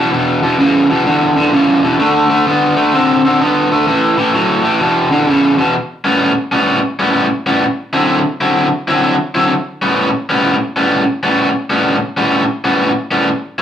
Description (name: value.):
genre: blues.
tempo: 128 BPM.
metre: 4/4.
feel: swing 65% on 8ths.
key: A mixolydian.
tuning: A4 = 443 Hz.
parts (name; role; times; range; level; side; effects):
cranked stack guitar; solo; 0.0-13.6 s; E2 to E4; -11 LUFS; equal; overdrive.
room: wet studio reverb, RT60 0.6 s.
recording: rough rehearsal-room recording, warm saturation.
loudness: -11 LUFS.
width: side -9 dB against mid.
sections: 0.0-5.8 A section; 5.8-13.6 B section.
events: none.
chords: 0.0 E5; 2.0 D5; 3.9 A5; 4.8 E5; 5.8 A9; 7.6 D9; 9.5 A9.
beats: | 0.12 0.59 1.06 1.53 | 2.00 2.47 2.94 3.40 | 3.87 4.34 4.81 5.28 | 5.75 6.22 6.69 7.16 | 7.63 8.10 8.57 9.04 | 9.51 9.98 10.45 10.93 | 11.39 11.87 12.34 12.80 | 13.28.